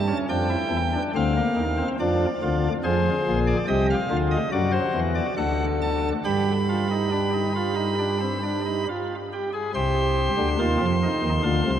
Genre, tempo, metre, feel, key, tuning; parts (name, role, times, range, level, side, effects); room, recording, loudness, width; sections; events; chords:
classical, baroque-style 3-part fugue for pipe organ; 70 BPM; 4/4; straight; C minor; A4 = 444 Hz
pipe organ, cornet; solo; 0.0-11.8 s; Bb1 to C6; -21 LUFS; equal
wet huge ambient reverb, RT60 7.4 s; in a vast, echoing space; -21 LUFS; side -9 dB against mid
0.0-9.7 A section; 9.7-11.8 B section
0.0 A7; 1.1 Dm; 2.8 Dm7b5; 4.5 D7; 6.2 G; 9.7 Cm